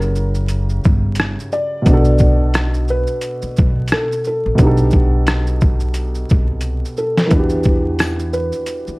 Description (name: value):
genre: lo-fi hip hop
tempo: 88 BPM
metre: 4/4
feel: swing 57% on 16ths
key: unclear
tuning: A4 = 444 Hz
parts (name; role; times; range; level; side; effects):
- felt-muted upright piano; melody; 0.0-9.0 s; A4 to D5; -23 LUFS; equal; low-pass filter
- dark upright piano; accompaniment; 0.0-9.0 s; B2 to A#4; -21 LUFS; equal; cassette tape, low-pass filter
- upright bass; bass; 0.0-8.9 s; F#1 to E2; -19 LUFS; equal; none
- trip hop sampler-style drum kit; drums; 0.0-9.0 s; hi-hat, kick drum, rim click, shaker, snare drum; -16 LUFS; equal; overdrive
- tambourine; percussion; 8.0-8.2 s; none; -39 LUFS; left 4 dB; none
room: light reverb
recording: vinyl crackle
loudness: -14 LUFS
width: side -25 dB against mid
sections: 0.0-9.0 A section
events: drum fill 6.6-7.3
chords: 0.0 F#7b9; 1.9 Bm7; 4.6 B7alt; 7.3 Em9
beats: 0.50 1.18 | 1.87 2.55 3.23 3.91 | 4.59 5.28 5.96 6.64 | 7.32 8.00 8.68